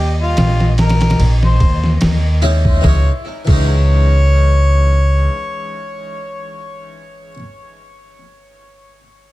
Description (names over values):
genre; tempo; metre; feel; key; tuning
trip hop; 73 BPM; 4/4; swing 55% on 16ths; C# minor; A4 = 440 Hz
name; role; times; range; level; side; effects
mellow harmonica; melody; 0.0-6.9 s; E#4 to C#5; -23 LUFS; left 2 dB; tape echo
harpsichord; accompaniment; 0.0-7.4 s; E3 to E4; -24 LUFS; left 1 dB; tremolo, vintage 12-bit sampler grit, tape echo
rich studio string section; sustained chords; 0.0-2.9 s; D#5; -31 LUFS; left 4 dB; vintage 12-bit sampler grit
upright bass; bass; 0.0-5.3 s; A#1 to D#2; -12 LUFS; equal; none
trip hop sampler-style drum kit; drums; 0.4-3.7 s; crash cymbal, kick drum, ride cymbal, snare drum; -16 LUFS; equal; none
room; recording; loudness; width
studio ambience; echo-heavy mix, faint mains hum; -11 LUFS; side -17 dB against mid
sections
0.0-2.8 A section; 2.8-6.1 B section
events
none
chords
0.0 D#add9; 2.8 C#madd9